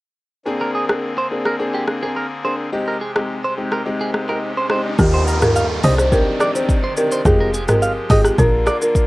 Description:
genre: afrobeats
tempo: 106 BPM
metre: 4/4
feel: straight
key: unclear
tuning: A4 = 440 Hz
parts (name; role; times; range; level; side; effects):
- warm baby grand piano; accompaniment; 0.5-9.0 s; Ab3 to Bb4; -23 LUFS; left 2 dB; cassette tape
- pipe organ, trumpet; sustained chords; 0.5-9.1 s; C3 to D5; -29 LUFS; left 1 dB; cassette tape
- clean electric guitar; riff; 0.6-8.8 s; G4 to F5; -22 LUFS; right 2 dB; cassette tape
- afro-pop drum kit; drums; 0.9-9.1 s; hi-hat, kick drum, rim click, shaker, toms; -19 LUFS; equal; cassette tape
- riser and downlifter; sound effects; 4.0-9.1 s; none; -29 LUFS; right 1 dB; none
- folk marimba with medium hard mallets; melody; 5.0-8.9 s; G4 to C5; -19 LUFS; equal; none
- woody log drum bass; bass; 5.0-8.7 s; F1 to Eb2; -18 LUFS; equal; none
room: moderate booth ambience, RT60 0.2 s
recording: home recording on cassette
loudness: -16 LUFS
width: side -20 dB against mid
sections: 0.5-5.0 A section; 5.0-9.1 B section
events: riser 4.0-5.0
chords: 0.5 Bb9; 2.7 Abmaj7; 5.0 Ebadd9; 5.8 Cmadd9; 7.3 Fmadd9; 8.4 Bb

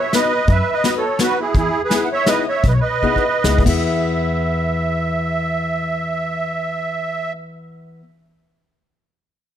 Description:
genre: musette waltz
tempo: 132-170 BPM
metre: 3/4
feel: straight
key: E major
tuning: A4 = 440 Hz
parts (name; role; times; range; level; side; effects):
- musette accordion; melody; 0.0-7.3 s; E4 to F#5; -19 LUFS; right 2 dB; none
- fingerpicked steel-string acoustic guitar; accompaniment; 0.1-8.0 s; B3 to B4; -24 LUFS; left 6 dB; none
- soft brush drum kit; drums; 0.1-3.8 s; crash cymbal, hi-hat, kick drum, snare drum; -20 LUFS; equal; none
- upright bass; bass; 0.5-8.0 s; B1 to F#2; -22 LUFS; equal; none
room: light reverb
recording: close, detailed microphones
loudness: -16 LUFS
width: side -10 dB against mid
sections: 0.0-3.9 A section; 3.9-6.6 B section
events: slowing down 1.5-3.9; drum fill 3.0-3.9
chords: 0.0 B; 1.5 Emaj7; 3.6 E

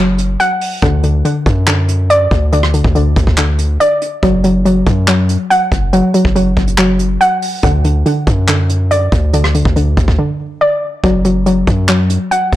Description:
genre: hip hop, trap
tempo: 141 BPM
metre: 4/4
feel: half-time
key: unclear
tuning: A4 = 442 Hz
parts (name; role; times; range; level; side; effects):
- hollow square pluck; arpeggios; 0.0-12.6 s; D3 to F#5; -13 LUFS; equal; chorus, low-pass filter, digital delay
- hard-hitting 808-style bass; bass; 0.0-12.6 s; F#1 to F#2; -14 LUFS; equal; none
- soft brush drum kit; drums; 0.2-12.6 s; handclaps, hi-hat, kick drum, rim click; -17 LUFS; equal; none
room: light reverb, studio ambience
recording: blown-out, overdriven recording, overdrive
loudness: -10 LUFS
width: side -14 dB against mid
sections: 0.0-11.0 A section; 11.0-12.6 B section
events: break 10.2-11.0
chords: 0.0 N.C.; 0.8 D; 4.2 N.C.; 7.6 D; 11.0 N.C.

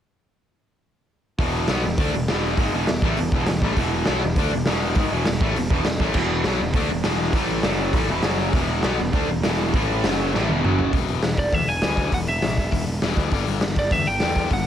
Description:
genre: punk rock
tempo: 201 BPM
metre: 4/4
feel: straight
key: unclear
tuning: A4 = 440 Hz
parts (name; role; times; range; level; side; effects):
- distorted electric guitar; riff; 1.4-14.7 s; E2 to D4; -26 LUFS; left 11 dB; distortion
- overdriven electric guitar; riff; 1.4-10.9 s; E2 to D4; -26 LUFS; right 11 dB; none
- overdriven picked electric bass; bass; 1.4-14.6 s; E1 to E2; -27 LUFS; equal; none
- raw garage drum kit; drums; 1.4-14.6 s; crash cymbal, hi-hat, kick drum, snare drum, toms; -23 LUFS; equal; none
- lightly driven lead guitar; melody; 11.4-14.7 s; D5 to G#5; -24 LUFS; equal; ping-pong delay
room: light reverb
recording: none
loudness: -19 LUFS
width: side -10 dB against mid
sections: 1.4-10.9 A section; 10.9-14.7 B section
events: drum fill 10.3-10.9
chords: 1.4 E; 7.3 A5; 7.6 F#5; 7.9 E5; 8.2 F#5; 8.5 E5; 9.7 A5; 10.0 F#5; 10.3 E5; 10.6 F#5; 10.9 E5; 13.3 G5

